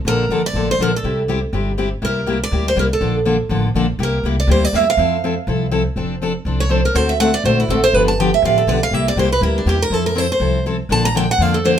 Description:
acoustic string swing (jazz manouche); 244 BPM; 4/4; swing 55% on 8ths; F major; A4 = 441 Hz
upright bass; bass; 0.0-11.8 s; F1 to F2; -21 LUFS; equal
picked steel-string acoustic guitar; melody; 0.1-11.8 s; D4 to Bb5; -18 LUFS; right 2 dB
picked steel-string acoustic guitar; accompaniment; 0.1-11.7 s; C3 to A4; -20 LUFS; left 3 dB
moderate studio reverb, RT60 0.6 s; minimal, uncompressed stereo recording; -15 LUFS; side -9 dB against mid
0.0-6.0 A section; 6.0-11.8 B section
steel-string acoustic guitar solo 6.0-11.8
0.1 Bbmaj7; 1.0 C; 2.0 C7; 3.0 Bbmaj7; 4.0 C7; 5.0 Fmaj7; 6.0 F6; 7.0 D7; 7.9 G7; 8.9 C7; 9.9 Fmaj7; 10.9 Bbmaj7
| 0.06 0.30 0.55 0.80 | 1.04 1.29 1.53 1.78 | 2.03 2.27 2.52 2.77 | 3.01 3.26 3.50 3.75 | 4.00 4.24 4.49 4.74 | 4.98 5.23 5.47 5.72 | 5.97 6.21 6.46 6.71 | 6.95 7.20 7.45 7.69 | 7.94 8.19 8.43 8.68 | 8.93 9.17 9.42 9.67 | 9.91 10.16 10.41 10.65 | 10.90 11.15 11.39 11.64

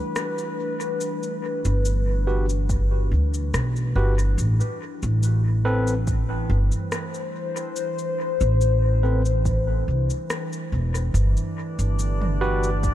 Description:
ambient dub; 71 BPM; 4/4; straight; A minor; A4 = 437 Hz
warbly tape-like pad; sustained chords; 0.0-12.9 s; E3 to C5; -28 LUFS; left 2 dB; chorus, built-in reverb
organic electronic drum kit; drums; 0.2-12.9 s; cabasa, rim click, toms; -34 LUFS; equal; small room ambience, dub echo
upright bass; bass; 1.6-12.9 s; E1 to D2; -21 LUFS; equal
overdriven tine electric piano; stabs; 2.3-12.7 s; C4 to B4; -31 LUFS; equal; auto-pan, dub echo
electronic kick drum; drums; 2.7-12.9 s; -26 LUFS; equal; small room ambience
drifting glass-harmonics texture; texture; 11.6-12.9 s; D4 to D5; -32 LUFS; equal; chorus, built-in reverb
light reverb; -21 LUFS; side -12 dB against mid
0.0-12.9 A section
0.0 G; 4.4 Am; 11.1 Gmaj7
0.16 | 1.00 1.85 2.69 3.54 | 4.38 5.23 6.07 6.92 | 7.76 8.61 9.45 10.30 | 11.14 11.99 12.84

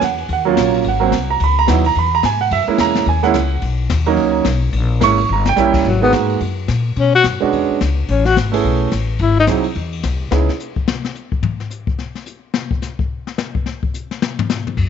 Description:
jazz, small-group swing and bop; 215 BPM; 4/4; swing 60% on 8ths; G# minor; A4 = 441 Hz
warm concert grand piano; accompaniment; 0.0-10.5 s; F#3 to C#6; -16 LUFS; right 9 dB
upright bass; bass; 0.0-10.5, 14.8-14.9 s; G1 to B2; -18 LUFS; left 2 dB
jazz brush drum kit; drums; 0.0-14.8 s; crash cymbal, hi-hat, kick drum, ride cymbal, snare drum, toms; -22 LUFS; left 6 dB
breathy tenor saxophone; melody; 5.9-9.5 s; F#3 to F#4; -16 LUFS; left 6 dB
light reverb; 1960s-style stereo with parts hard left and right, nothing above 7.8 kHz; -14 LUFS; side -7 dB against mid
0.0-5.9 A section; 5.9-14.8 A section
drum fill 5.3; tenor saxophone solo 5.9-14.9; drum solo 10.3-14.8
0.3 D#m9; 0.8 G#7; 1.4 C#m11; 2.5 F#7; 3.6 Bmaj7; 4.7 A#m7b5; 5.3 Gdim7; 5.9 G#m9; 7.0 Bmadd9; 7.5 E13; 8.1 Amaj9; 9.2 G#7b13; 10.3 C#m9; 11.4 N.C.
0.01 | 0.29 0.56 0.84 1.12 | 1.40 1.68 1.96 2.23 | 2.51 2.79 3.07 3.35 | 3.63 3.90 4.18 4.46 | 4.74 5.02 5.30 5.57 | 5.85 6.13 6.41 6.69 | 6.97 7.25 7.53 7.80 | 8.08 8.36 8.64 8.92 | 9.20 9.47 9.75 10.03 | 10.31 10.59 10.87 11.15 | 11.43 11.70 11.98 12.26 | 12.54 12.82 13.10 13.38 | 13.65 13.93 14.21 14.49 | 14.77

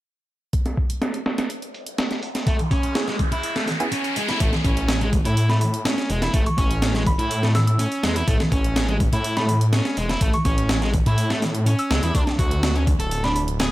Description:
breakbeat, breaks; 124 BPM; 4/4; straight; A major; A4 = 439 Hz
breakbeat sampler-style drum kit; drums; 0.5-13.7 s; hi-hat, kick drum, snare drum; -23 LUFS; equal; low-pass filter on kick, studio reverb, low-pass filter on hats, low-pass filter on snare
electronic hi-hat; drums; 0.5-13.7 s; -38 LUFS; right 2 dB; studio reverb
riser; sound effects; 1.5-4.4 s; -30 LUFS; left 1 dB
thick fuzz guitar; riff; 2.5-13.7 s; G#3 to A4; -25 LUFS; equal; distortion, tube saturation, dub echo
filtered dub chord stab; stabs; 3.0-3.9 s; B3 to G#4; -31 LUFS; right 2 dB; chorus, dub echo
detuned saw bass; bass; 4.4-13.7 s; D1 to A2; -22 LUFS; equal
glassy synth bell; melody; 5.5-13.4 s; B5 to E6; -30 LUFS; equal; chorus, old record sound, dub echo
digital ambience; -19 LUFS; side -16 dB against mid
0.5-4.4 A section; 4.4-13.7 B section
filter sweep on drum 0.5-4.4; riser 1.5-4.4
0.5 Amaj9 (rootless); 4.4 A; 12.1 D
| 0.53 1.02 1.50 1.99 | 2.47 2.95 3.44 3.92 | 4.41 4.89 5.37 5.86 | 6.34 6.82 7.31 7.79 | 8.28 8.76 9.24 9.73 | 10.21 10.70 11.18 11.66 | 12.15 12.63 13.11 13.60

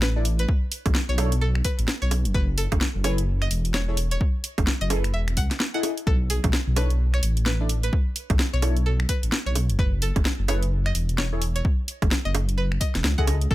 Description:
UK garage, two-step garage; 129 BPM; 4/4; swing 61% on 16ths; A4 = 442 Hz
string-like resonator pluck; melody; 0.0-13.5 s; G#4 to F#5; -33 LUFS; equal; chorus, dub echo
dark detuned saw bass; bass; 0.0-13.5 s; E1 to C#2; -23 LUFS; equal
garage drum kit; drums; 0.0-13.5 s; bongos, finger snaps, hi-hat, snare drum; -27 LUFS; right 1 dB
deep mellow chord stab; stabs; 0.2-13.4 s; D4 to D#5; -31 LUFS; left 1 dB; chorus, phaser
electronic kick drum; drums; 0.5-13.5 s; -23 LUFS; equal; overdrive
digital ambience; -21 LUFS; side -16 dB against mid
0.0-13.5 A section
0.0 Bm11; 2.1 F#m11; 6.1 Bm11; 9.6 F#m11
0.02 | 0.48 0.95 1.42 1.88 | 2.35 2.81 3.28 3.74 | 4.21 4.67 5.14 5.60 | 6.07 6.53 7.00 7.46 | 7.93 8.39 8.86 9.32 | 9.79 10.25 10.72 11.18 | 11.65 12.11 12.58 13.04 | 13.51

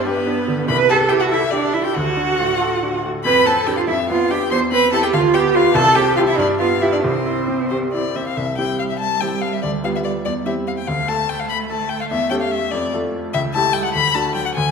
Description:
quick classical-period movement for piano trio; 96 BPM (dotted quarters); 6/8; rubato; C major from 3.2 s; A4 = 440 Hz
rich violin; melody; 0.0-14.7 s; B4 to C6; -21 LUFS; left 7 dB
rich cello; second line; 0.0-14.5 s; F#3 to C5; -19 LUFS; right 4 dB
clear baby grand piano; accompaniment; 0.0-14.7 s; C2 to B4; -21 LUFS; equal
wet concert hall reverb, RT60 1.8 s; recorded in a church or concert hall; -16 LUFS; side -5 dB against mid
0.0-8.4 A section; 8.4-14.7 B section
0.0 G; 0.7 Am7/C; 1.9 D; 3.2 Dm7/F; 3.9 G7/F; 4.5 C/E; 5.1 Bdim/D; 5.7 C; 6.4 G7; 7.0 C; 9.6 G7/D; 10.3 C/E; 10.9 D5; 12.1 A7/E; 12.7 F6; 13.3 A7/C#; 13.9 D
0.07 | 0.68 1.31 | 1.95 2.60 | 3.25 3.88 | 4.51 5.13 | 5.75 6.38 | 7.04 7.71 | 8.37 9.01 | 9.63 10.26 | 10.88 11.50 | 12.11 12.72 | 13.34 13.95 | 14.56

